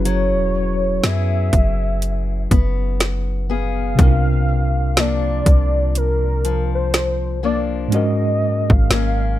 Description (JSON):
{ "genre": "contemporary R&B", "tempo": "61 BPM", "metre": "4/4", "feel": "swing 58% on 16ths", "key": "unclear", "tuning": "A4 = 440 Hz", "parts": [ { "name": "warm velvety synth lead", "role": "melody", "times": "0.0-9.4 s", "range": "Bb4 to E#5", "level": "-23 LUFS", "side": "equal", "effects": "chorus, ping-pong delay" }, { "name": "mellow tine electric piano", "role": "accompaniment", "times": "0.0-9.4 s", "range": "G#2 to B4", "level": "-24 LUFS", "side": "right 1 dB", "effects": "overdrive, fast stereo tremolo" }, { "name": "fingerpicked steel-string acoustic guitar", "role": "arpeggios", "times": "0.0-9.4 s", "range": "G#2 to G#4", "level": "-26 LUFS", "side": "left 9 dB", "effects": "none" }, { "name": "warm 808-style bass", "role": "bass", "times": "0.0-9.4 s", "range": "E1 to F#2", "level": "-20 LUFS", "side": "equal", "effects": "none" }, { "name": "trap drum kit", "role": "drums", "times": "0.1-9.2 s", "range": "hi-hat, kick drum, snare drum", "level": "-16 LUFS", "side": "equal", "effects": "none" } ], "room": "little or no reverb", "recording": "none", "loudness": "-16 LUFS", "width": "side -14 dB against mid", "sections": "0.0-9.4 A section", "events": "none", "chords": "0.0 F#9sus4; 4.0 C9sus4; 7.9 G#9sus4" }